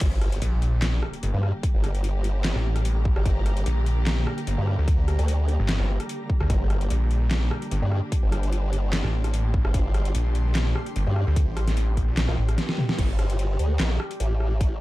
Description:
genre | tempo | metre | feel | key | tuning
heavy wobble dubstep | 148 BPM | 4/4 | swing 54% on 16ths, half-time | G minor | A4 = 440 Hz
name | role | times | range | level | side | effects
warm symphonic string section | sustained chords | 0.0-13.0 s | D3 to G4 | -36 LUFS | equal | sidechain pumping
formant-sweep wobble bass | bass | 0.0-14.8 s | G1 to G2 | -24 LUFS | equal | chorus, overdrive
dubstep drum kit | drums | 0.0-14.7 s | crash cymbal, handclaps, hi-hat, rim click, snare drum, toms | -30 LUFS | equal | overdrive
electronic kick drum | drums | 0.0-14.7 s | none | -24 LUFS | equal | overdrive
sub drop | sound effects | 0.0-1.6 s | none | -34 LUFS | equal | none
granular cloud pad | texture | 1.1-14.8 s | G4 to C6 | -38 LUFS | left 1 dB | built-in reverb, sidechain pumping
snarling distorted saw bass | bass | 0.4-12.6 s | G1 to D2 | -23 LUFS | equal | distortion, overdrive
room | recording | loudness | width
little or no reverb | dark, warm production | -22 LUFS | side -18 dB against mid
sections
0.0-13.0 A section; 13.0-14.8 A section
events
drop 0.0-13.0, 13.0-14.8; impact 0.0-1.6; kick drops out 12.6-13.0; drum fill 12.6-13.0; band accent 12.9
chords
0.0 Gm

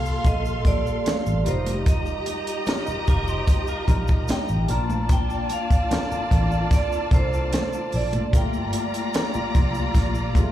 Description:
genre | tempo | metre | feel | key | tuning
lush 1970s-style soul | 74 BPM | 4/4 | straight | G minor | A4 = 440 Hz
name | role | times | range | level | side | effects
vibraphone with medium hard mallets | melody | 0.0-9.9 s | C5 to Bb5 | -30 LUFS | right 3 dB | slapback echo
warm studio string section | second line | 0.0-10.5 s | F4 to C6 | -30 LUFS | right 1 dB | slapback echo
tine electric piano | accompaniment | 0.0-10.5 s | G3 to Bb4 | -31 LUFS | left 5 dB | medium stereo tremolo, slapback echo
vintage muted fingered electric bass | bass | 0.0-10.4 s | F1 to Bb2 | -24 LUFS | equal | none
egg shaker | percussion | 0.1-10.5 s | none | -47 LUFS | right 5 dB | none
compact cocktail drum kit | drums | 0.2-10.5 s | hi-hat, kick drum, snare drum | -21 LUFS | equal | none
congas | percussion | 0.3-10.5 s | none | -34 LUFS | right 2 dB | slapback echo
clean electric guitar | riff | 3.1-4.7 s | F4 to C5 | -35 LUFS | right 2 dB | analog chorus, slapback echo
room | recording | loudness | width
little or no reverb | live gig heard through the venue's PA, club reverb | -20 LUFS | side -12 dB against mid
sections
0.0-10.5 A section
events
none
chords
0.0 Gm9; 1.5 F9sus4; 4.7 Bbmaj7; 8.3 Gm9

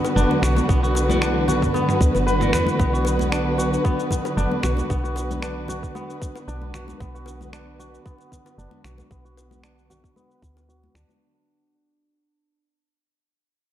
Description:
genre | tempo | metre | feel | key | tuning
organic downtempo | 114 BPM | 4/4 | swing 54% on 16ths | B minor pentatonic | A4 = 445 Hz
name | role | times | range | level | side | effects
dark studio string section | sustained chords | 0.0-11.2 s | D3 to B4 | -24 LUFS | equal | sidechain pumping, low-pass filter
kora | arpeggios | 0.0-12.6 s | B3 to B4 | -27 LUFS | equal | low-pass filter, tape echo
bongos and congas | percussion | 0.0-11.2 s | none | -32 LUFS | left 5 dB | none
dusty soul sampler-style drum kit | drums | 0.1-11.2 s | finger snaps, shaker, toms | -30 LUFS | equal | overdrive, studio reverb
woody FM bass | bass | 0.2-11.0 s | F#1 to E2 | -24 LUFS | equal | sidechain pumping
electronic kick drum | drums | 0.7-10.5 s | none | -23 LUFS | equal | studio reverb
clean electric guitar | accompaniment | 1.1-3.1 s | E3 to F#4 | -30 LUFS | left 2 dB | sidechain pumping, tape echo
room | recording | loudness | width
moderate lush hall reverb, RT60 1.9 s, digital ambience | dark, warm production | -19 LUFS | side -11 dB against mid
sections
0.0-11.2 A section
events
fade-out 0.0-11.2; filter sweep on kora 0.0-11.2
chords
0.0 Bm

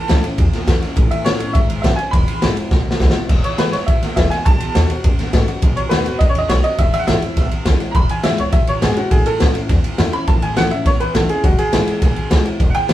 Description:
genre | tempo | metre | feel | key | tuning
rockabilly | 206 BPM | 4/4 | straight | E major | A4 = 444 Hz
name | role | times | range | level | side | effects
bright upright piano | melody | 0.0-12.9 s | F#4 to B5 | -20 LUFS | right 1 dB | none
picked steel-string acoustic guitar | accompaniment | 0.0-12.9 s | E2 to F#4 | -24 LUFS | left 3 dB | none
upright bass | bass | 0.1-12.9 s | E1 to G#2 | -20 LUFS | equal | none
raw garage drum kit | drums | 0.1-12.9 s | crash cymbal, kick drum, ride cymbal, snare drum | -16 LUFS | equal | none
room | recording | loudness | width
wet studio reverb, RT60 0.6 s | band playing live in one room | -14 LUFS | side -13 dB against mid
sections
0.0-8.0 A section; 8.0-12.9 B section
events
drum fill 2.7-3.3; upright piano solo 8.0-12.9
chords
0.0 A; 2.1 E; 4.5 B7; 6.8 E; 9.1 A; 11.4 E

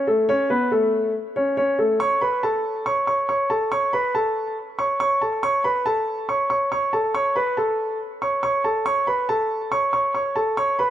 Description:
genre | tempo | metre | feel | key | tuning
hip hop | 140 BPM | 4/4 | half-time | unclear | A4 = 440 Hz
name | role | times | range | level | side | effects
warm concert grand piano | solo | 0.0-10.9 s | A3 to C#6 | -19 LUFS | equal | tape echo
room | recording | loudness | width
light reverb, small room ambience | none | -20 LUFS | side -11 dB against mid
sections
0.0-2.0 A section; 2.0-10.9 B section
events
none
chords
0.0 Aadd9

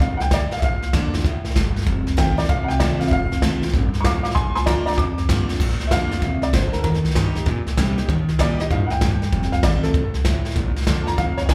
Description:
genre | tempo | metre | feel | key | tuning
rockabilly | 193 BPM | 4/4 | swing 65% on 8ths | Bb major | A4 = 444 Hz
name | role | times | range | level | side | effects
dark upright piano | melody | 0.0-11.5 s | A4 to D6 | -27 LUFS | equal | slapback echo
picked steel-string acoustic guitar | accompaniment | 0.0-11.5 s | F2 to G4 | -26 LUFS | equal | slapback echo
upright bass | bass | 0.0-11.5 s | F1 to C3 | -28 LUFS | equal | none
jazz brush drum kit | drums | 0.0-11.5 s | crash cymbal, hi-hat, kick drum, snare drum | -23 LUFS | equal | none
room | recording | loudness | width
little or no reverb | live gig heard through the venue's PA, club reverb | -20 LUFS | mono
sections
0.0-5.6 A section; 5.6-11.5 B section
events
upright piano solo 0.0-5.6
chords
0.0 F; 0.6 Bb; 1.9 F7; 4.4 Bb; 6.8 Eb; 9.3 F7; 10.6 Bb

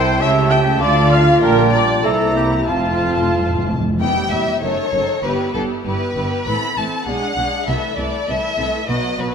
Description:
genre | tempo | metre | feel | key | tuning
quick classical-period movement for symphony orchestra | 98 BPM | 2/4 | rubato | F major | A4 = 435 Hz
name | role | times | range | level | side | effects
warm studio violin section | melody | 0.0-9.3 s | A4 to B5 | -23 LUFS | left 3 dB | none
clear clarinet | second line | 0.0-3.7 s | E4 to G4 | -25 LUFS | left 3 dB | none
clear oboe | second line | 0.0-3.7 s | F4 to G5 | -24 LUFS | right 1 dB | none
rich studio violin section | second line | 0.0-9.3 s | B3 to E5 | -28 LUFS | left 2 dB | none
silver concert flute | second line | 0.0-3.7 s | G5 to Bb5 | -25 LUFS | right 1 dB | none
mellow bassoon | accompaniment | 0.0-3.7 s | D4 to F4 | -21 LUFS | equal | none
warm studio viola section | accompaniment | 0.0-9.3 s | D#3 to G5 | -22 LUFS | right 1 dB | none
mellow French horn section | sustained chords | 0.0-3.6 s | G3 to G4 | -23 LUFS | left 1 dB | none
rich studio cello section | bass | 0.0-9.3 s | E2 to D3 | -23 LUFS | right 2 dB | none
rich studio double bass section | bass | 0.0-9.3 s | E1 to D2 | -25 LUFS | right 2 dB | none
timpani | percussion | 2.7-4.0 s | F2 | -24 LUFS | equal | none
room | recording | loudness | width
wet scoring stage reverb, RT60 1.5 s | minimal, uncompressed stereo recording | -15 LUFS | side -6 dB against mid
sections
0.0-4.0 A section; 4.0-9.3 B section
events
timpani fill 2.7-4.0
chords
0.2 A7/C#; 0.8 Dm; 1.4 Gm7/Bb; 2.0 C7; 2.7 F; 4.0 Em; 4.6 D#dim; 5.2 Em/G; 6.5 Am; 7.1 G#dim/B; 7.7 Am/C

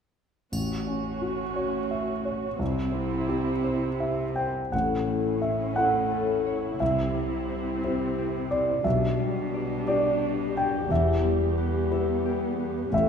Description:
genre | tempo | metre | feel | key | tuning
cinematic, emotional film score for orchestra | 58 BPM (dotted quarters) | 6/8 | rubato | unclear | A4 = 440 Hz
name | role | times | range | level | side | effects
dark chamber viola section | accompaniment | 0.5-13.1 s | B3 to G4 | -30 LUFS | left 1 dB | none
warm grand piano | accompaniment | 0.5-13.1 s | A1 to G5 | -27 LUFS | equal | none
rich symphonic cello section | bass | 0.5-13.1 s | E2 to C3 | -34 LUFS | right 5 dB | none
triangle | percussion | 0.5-1.9 s | none | -42 LUFS | right 2 dB | none
concert harp | arpeggios | 4.7-13.1 s | E2 to E5 | -32 LUFS | left 7 dB | none
dark studio double bass section | bass | 4.7-13.1 s | E1 to C2 | -34 LUFS | right 3 dB | none
room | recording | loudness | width
moderate scoring stage reverb, RT60 1.6 s | minimal, uncompressed stereo recording | -24 LUFS | side -7 dB against mid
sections
0.5-4.7 A section; 4.7-13.1 B section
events
none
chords
0.5 A6; 2.6 C; 4.7 A6; 6.8 C; 8.8 G/B; 10.9 Em

